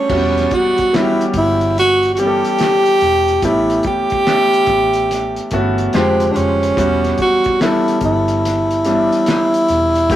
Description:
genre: R&B, neo-soul.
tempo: 72 BPM.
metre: 4/4.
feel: swing 64% on 16ths.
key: E dorian.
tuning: A4 = 440 Hz.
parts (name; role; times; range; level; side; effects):
breathy tenor saxophone; melody; 0.0-10.2 s; C4 to G4; -14 LUFS; right 1 dB; none.
clear baby grand piano; accompaniment; 0.0-10.2 s; D3 to C5; -19 LUFS; left 1 dB; none.
vintage muted fingered electric bass; bass; 0.1-10.2 s; E1 to A1; -23 LUFS; equal; none.
cloth-damped thuddy drum kit; drums; 0.1-10.2 s; crash cymbal, handclaps, hi-hat, kick drum, snare drum; -24 LUFS; left 1 dB; none.
room: light reverb.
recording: rough rehearsal-room recording, warm saturation.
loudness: -12 LUFS.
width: side -12 dB against mid.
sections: 0.1-10.2 A section.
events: none.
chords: 0.1 Em69; 3.4 A9; 5.9 Fm69; 6.8 Em69.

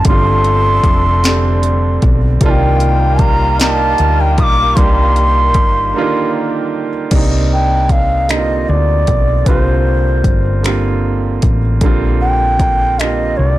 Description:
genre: slow six-eight R&B.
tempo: 51 BPM (dotted quarters).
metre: 6/8.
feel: straight.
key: C dorian.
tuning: A4 = 439 Hz.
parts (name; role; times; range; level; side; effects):
bright reedy bansuri; melody; 0.0-13.6 s; C5 to Eb6; -16 LUFS; equal; plate reverb.
warm grand piano; accompaniment; 0.0-13.6 s; D3 to G4; -19 LUFS; right 4 dB; plate reverb.
mellow horn section; stabs; 0.0-6.7 s; F3 to Bb4; -22 LUFS; left 5 dB; plate reverb.
hollow-body short-scale fingered electric bass; bass; 0.0-13.6 s; F1 to D2; -14 LUFS; equal; tube saturation.
smooth R&B drum kit; drums; 0.0-13.2 s; crash cymbal, finger snaps, hi-hat, kick drum, snare drum; -15 LUFS; equal; overdrive.
room: light reverb.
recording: blown-out, overdriven recording, overdrive.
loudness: -11 LUFS.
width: side -15 dB against mid.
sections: 0.0-7.1 A section; 7.1-13.6 B section.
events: break 5.9-7.1.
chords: 0.1 G9sus4; 2.4 Cm11; 7.1 Cm9; 11.8 Bb69.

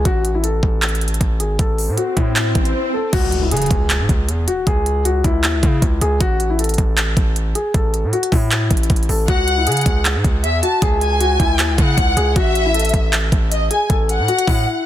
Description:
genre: hip hop, trap.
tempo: 156 BPM.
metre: 4/4.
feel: half-time.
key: C# minor.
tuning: A4 = 440 Hz.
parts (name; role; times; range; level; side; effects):
dark concert grand piano; melody; 0.0-14.9 s; E4 to A4; -22 LUFS; left 3 dB; tape echo.
distorted 808-style bass; bass; 0.0-14.7 s; G#1 to C#3; -19 LUFS; equal; distortion.
trap drum kit; drums; 0.1-14.6 s; crash cymbal, handclaps, hi-hat, kick drum; -18 LUFS; equal; overdrive.
swell and impact; sound effects; 1.9-4.7 s; none; -25 LUFS; equal; none.
warm studio violin section; second line; 9.3-14.8 s; D#5 to A5; -20 LUFS; left 1 dB; tape echo.
room: little or no reverb.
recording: dense, heavily limited modern master.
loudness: -14 LUFS.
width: side -12 dB against mid.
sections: 0.0-3.1 A section; 3.1-14.9 B section.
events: swell 1.9-3.1; break 2.7-3.1, 14.7; impact 3.1-4.7.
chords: 0.1 A5; 3.1 C#m; 6.2 A5; 9.3 C#m; 12.4 A5.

